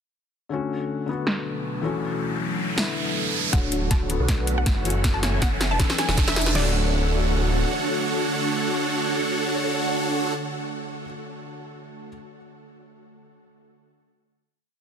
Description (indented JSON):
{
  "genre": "future bass",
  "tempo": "159 BPM",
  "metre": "4/4",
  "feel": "swing 53% on 16ths, half-time",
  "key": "D major",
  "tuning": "A4 = 438 Hz",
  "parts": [
    { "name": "felt-muted upright piano", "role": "accompaniment", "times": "0.5-12.1 s", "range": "D3 to C#5", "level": "-31 LUFS", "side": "left 4 dB", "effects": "sidechain pumping, digital delay" },
    { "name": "ethereal airy pad", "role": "sustained chords", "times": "0.8-10.3 s", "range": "D3 to A4", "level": "-33 LUFS", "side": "right 1 dB", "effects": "ensemble chorus, built-in reverb, sidechain pumping" },
    { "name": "riser", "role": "sound effects", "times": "1.7-6.5 s", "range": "none", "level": "-32 LUFS", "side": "right 2 dB", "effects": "none" },
    { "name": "big-room dance drum kit", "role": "drums", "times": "1.3-6.5 s", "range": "hi-hat, snare drum", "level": "-29 LUFS", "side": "equal", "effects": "low-pass filter on snare, low-pass filter on hats" },
    { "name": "wide unison pluck", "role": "melody", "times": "3.5-11.0 s", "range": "D5 to A5", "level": "-33 LUFS", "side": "left 1 dB", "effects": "none" },
    { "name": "supersaw chords", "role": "riff", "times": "3.5-10.3 s", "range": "D4 to G#5", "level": "-26 LUFS", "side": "right 2 dB", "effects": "phaser, sidechain pumping, low-pass filter, digital delay" },
    { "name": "wide detuned saw bass", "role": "bass", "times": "3.5-7.6 s", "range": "D1 to B1", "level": "-25 LUFS", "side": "equal", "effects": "chorus, sidechain pumping" },
    { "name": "dubstep drum kit", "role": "drums", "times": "3.5-6.6 s", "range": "crash cymbal, kick drum, snare drum", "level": "-24 LUFS", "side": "equal", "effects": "none" }
  ],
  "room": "light reverb",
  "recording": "dense, heavily limited modern master",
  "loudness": "-21 LUFS",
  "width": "side -7 dB against mid",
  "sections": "0.5-3.5 intro; 3.5-6.6 build; 6.6-9.6 final chord",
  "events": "riser 1.7-3.5, 3.5-6.6; build-up 3.5-6.6; drum fill 3.5-6.6; filter sweep on supersaw synth 3.5-6.6; filter sweep on synth pluck 3.5-6.6",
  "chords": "0.5 Dmaj7; 1.1 Bm7; 1.8 F#m7; 2.8 E7sus4; 3.5 Dmaj7; 4.1 Bm7; 4.9 F#m7; 5.8 E7sus4; 6.6 Dmaj7",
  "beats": "| 0.51 0.89 1.27 1.65 | 2.02 2.40 2.78 3.15 | 3.53 3.91 4.29 4.66 | 5.04 5.42 5.80 6.17 | 6.55 6.93 7.31 7.68 | 8.06 8.44 8.81 9.19"
}